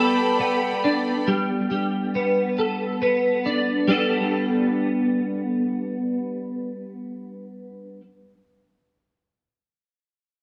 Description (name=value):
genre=rock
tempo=46 BPM (dotted quarters)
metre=6/8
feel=straight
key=G major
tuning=A4 = 440 Hz
part: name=rich studio string section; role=sustained chords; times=0.0-1.2 s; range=A4 to B5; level=-27 LUFS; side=equal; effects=none
part: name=twelve-string electric guitar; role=arpeggios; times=0.0-8.0 s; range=G3 to A4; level=-24 LUFS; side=equal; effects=ensemble chorus, analog delay
room=wet large studio reverb, RT60 1.2 s, digital ambience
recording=none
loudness=-23 LUFS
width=mono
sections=0.0-3.9 A section; 3.9-6.5 B section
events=none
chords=0.0 Gadd9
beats=| 1.27 2.58 | 3.89 5.20